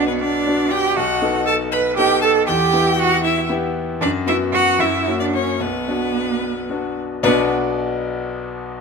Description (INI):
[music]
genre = quick classical-period movement for piano trio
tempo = 72-80 BPM (dotted quarters)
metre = 6/8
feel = rubato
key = B minor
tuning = A4 = 440 Hz
[part]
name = clear violin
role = melody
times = 0.0-7.5 s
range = B4 to B5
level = -24 LUFS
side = left 9 dB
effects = none
[part]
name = clear cello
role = second line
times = 0.0-7.5 s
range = B3 to B4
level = -19 LUFS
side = right 7 dB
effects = none
[part]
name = bright concert grand piano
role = accompaniment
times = 0.0-8.8 s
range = B1 to D5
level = -21 LUFS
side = left 3 dB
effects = none
[sound]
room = moderate scoring stage reverb, RT60 1.8 s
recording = close, detailed microphones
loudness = -16 LUFS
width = side -5 dB against mid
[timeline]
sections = 0.0-7.2 A section; 7.2-8.8 B section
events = none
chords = 0.0 Bm; 1.0 B7; 2.5 Em; 4.0 B5/F#; 4.8 F#; 5.6 Bm